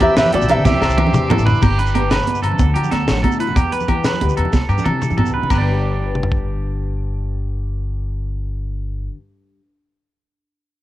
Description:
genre	highlife guitar band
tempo	123 BPM (dotted quarters)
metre	12/8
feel	straight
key	G major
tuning	A4 = 440 Hz
part	fingerpicked swing-style acoustic guitar	melody	0.0-1.4 s	F#4 to E5	-17 LUFS	right 1 dB	none
part	breathy trombone	second line	0.0-1.4 s	B3 to C4	-29 LUFS	left 7 dB	cassette tape
part	nylon-string guitar	accompaniment	0.0-9.7 s	E2 to B4	-26 LUFS	left 6 dB	cassette tape
part	overdriven combo organ	sustained chords	0.0-1.6 s	E5 to E6	-28 LUFS	equal	cassette tape
part	electric guitar at the edge of break-up	arpeggios	0.0-9.1 s	G4 to D5	-23 LUFS	right 6 dB	cassette tape, analog delay
part	upright bass	bass	0.0-9.1 s	G1 to E3	-20 LUFS	equal	none
part	tight funk drum kit	drums	0.0-6.4 s	crash cymbal, hi-hat, kick drum, snare drum, toms	-20 LUFS	equal	none
part	agogo bells	percussion	0.0-5.6 s	none	-28 LUFS	left 9 dB	none
part	congas	percussion	0.0-5.7 s	none	-23 LUFS	right 6 dB	none
part	shekere	percussion	0.2-5.7 s	none	-26 LUFS	left 4 dB	none
room	light reverb, small room ambience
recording	home recording on cassette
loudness	-15 LUFS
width	side -14 dB against mid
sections	0.0-1.6 A section; 1.6-5.5 B section; 5.5-9.4 C section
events	drum fill 0.7-1.6, 4.5-5.5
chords	0.0 Em; 0.7 Cadd9; 1.6 G; 2.6 D; 3.6 Em; 4.5 Cadd9; 5.5 G

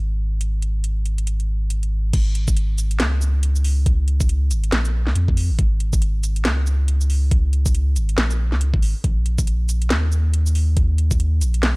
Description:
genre	deep dubstep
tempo	139 BPM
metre	4/4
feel	swing 59% on 16ths, half-time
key	unclear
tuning	A4 = 440 Hz
part	soft dub sub bass	bass	0.0-11.8 s	G#1 to E#2	-18 LUFS	equal	tube saturation
part	garage drum kit	drums	0.4-11.7 s	crash cymbal, hi-hat, shaker, snare drum	-25 LUFS	equal	none
part	electronic kick drum	drums	2.1-11.2 s	none	-19 LUFS	equal	none
room	digital ambience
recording	dry, gritty hardware recording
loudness	-17 LUFS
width	side -28 dB against mid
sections	0.0-2.1 A section; 2.1-11.8 B section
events	drop 2.1-11.8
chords	none

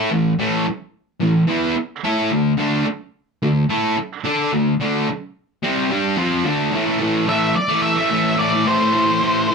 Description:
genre	rock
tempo	109 BPM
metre	4/4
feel	straight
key	A minor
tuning	A4 = 439 Hz
part	fuzz guitar	riff	0.0-9.5 s	A2 to D5	-17 LUFS	equal	distortion
part	octave-fuzz lead guitar	melody	7.3-9.5 s	C5 to E5	-18 LUFS	equal	distortion
room	light reverb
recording	none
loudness	-17 LUFS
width	side -5 dB against mid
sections	0.0-6.7 A section; 6.7-9.5 B section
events	lead electric guitar solo 6.7-9.5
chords	0.0 A5; 2.3 D5; 6.7 Am

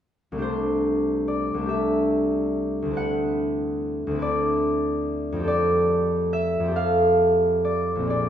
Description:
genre	classical, solo harp piece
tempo	47 BPM (dotted quarters)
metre	6/8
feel	rubato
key	C major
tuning	A4 = 440 Hz
part	concert harp	solo	0.3-8.3 s	Bb1 to F#5	-21 LUFS	equal	none
room	wet stone room reverb, RT60 1.3 s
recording	heard from further back in the room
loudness	-21 LUFS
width	side -9 dB against mid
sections	0.4-8.3 A section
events	none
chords	0.4 C69; 3.0 D13; 5.5 F69

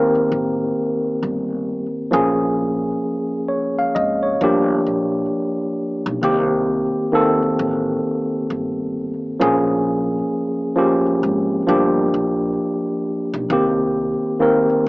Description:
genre	hip hop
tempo	66 BPM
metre	4/4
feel	swing 63% on 16ths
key	unclear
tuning	A4 = 440 Hz
part	tine electric piano	accompaniment	0.0-14.9 s	Eb3 to F5	-17 LUFS	equal	overdrive, fast stereo tremolo, low-pass filter, plate reverb
part	upright bass	bass	0.1-14.7 s	G1 to C2	-28 LUFS	equal	none
room	moderate studio reverb, RT60 0.6 s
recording	cassette tape, small speaker sound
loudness	-17 LUFS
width	side -25 dB against mid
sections	0.0-14.9 A section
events	none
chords	0.0 Cm7; 2.1 Bbm7; 4.4 Gm7; 6.2 Cm7; 9.4 Bbm7; 11.7 Gm7; 13.5 Cm7

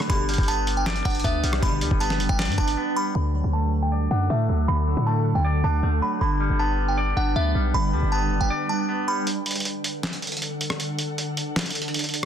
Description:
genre	hip hop, trap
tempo	157 BPM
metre	4/4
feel	half-time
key	D major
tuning	A4 = 445 Hz
part	delicate synth tine bell	melody	0.0-9.2 s	E5 to B5	-28 LUFS	right 1 dB	chorus, low-pass filter, tape echo
part	clean electric guitar	accompaniment	0.0-9.3 s	D3 to D5	-27 LUFS	equal	low-pass filter
part	ethereal airy pad	sustained chords	0.0-12.3 s	D3 to G5	-31 LUFS	right 1 dB	ensemble chorus, built-in reverb, low-pass filter
part	dusty soul sampler-style drum kit	drums	0.0-2.8, 9.3-12.3 s	handclaps, hi-hat, kick drum, rim click, snare drum	-26 LUFS	equal	overdrive
part	dark studio string section	stabs	0.1-2.0 s	D2 to G3	-33 LUFS	left 5 dB	none
part	warm 808-style bass	bass	0.1-8.5 s	F#1 to A2	-24 LUFS	equal	none
room	digital ambience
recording	dense, heavily limited modern master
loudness	-21 LUFS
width	side -9 dB against mid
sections	0.0-3.2 A section; 3.2-9.3 B section; 9.3-12.3 C section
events	drums muted 2.8-3.2; filter sweep 3.2-9.3; break 8.5-9.3, 9.3-12.3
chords	0.1 G; 3.2 D; 6.2 G; 9.3 D

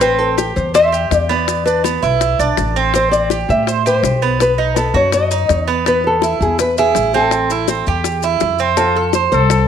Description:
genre	latin, Cuban son and guajira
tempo	164 BPM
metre	4/4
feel	straight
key	A minor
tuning	A4 = 444 Hz
part	nylon-string guitar	melody	0.0-9.7 s	G#4 to E5	-16 LUFS	left 2 dB	slapback echo
part	Cuban tres	arpeggios	0.0-9.7 s	B3 to C5	-17 LUFS	right 8 dB	none
part	upright bass	bass	0.0-9.7 s	A1 to A2	-20 LUFS	left 1 dB	none
part	bongos	percussion	0.0-9.7 s	none	-22 LUFS	left 14 dB	none
part	maracas	percussion	0.0-9.7 s	none	-29 LUFS	left 15 dB	none
part	warm trumpet	second line	8.8-9.7 s	F4 to A4	-20 LUFS	left 11 dB	none
room	moderate echo chamber reverb, RT60 1.5 s, studio reverb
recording	1960s-style stereo with parts hard left and right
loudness	-13 LUFS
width	side -8 dB against mid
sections	0.0-8.8 A section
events	none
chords	0.0 Am7; 1.5 E5; 2.9 Am7; 4.4 B; 5.9 E; 7.3 Am7; 8.8 F

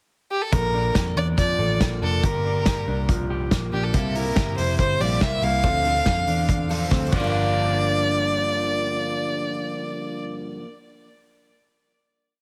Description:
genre	jangly indie pop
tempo	141 BPM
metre	4/4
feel	straight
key	G dorian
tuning	A4 = 440 Hz
part	rich violin	melody	0.3-10.2 s	G4 to F5	-27 LUFS	equal	digital delay
part	electric guitar through a small old amp	arpeggios	0.5-10.7 s	G2 to A4	-33 LUFS	equal	none
part	vintage muted picked electric bass	bass	0.5-10.2 s	F1 to F2	-28 LUFS	equal	none
part	vintage drum kit	drums	0.5-7.2 s	crash cymbal, hi-hat, kick drum, snare drum	-27 LUFS	equal	none
part	picked twelve-string acoustic guitar	accompaniment	3.9-10.8 s	G2 to Bb4	-32 LUFS	equal	none
room	light reverb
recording	heavily compressed radio sound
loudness	-23 LUFS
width	mono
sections	0.0-0.5 pickup bar; 0.5-7.3 verse; 7.3-10.8 final hit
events	drum fill 6.9-7.3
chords	0.0 N.C.; 0.5 Bbmaj7; 2.2 Gm7; 3.9 C7; 5.6 Dm7; 7.1 Gm7

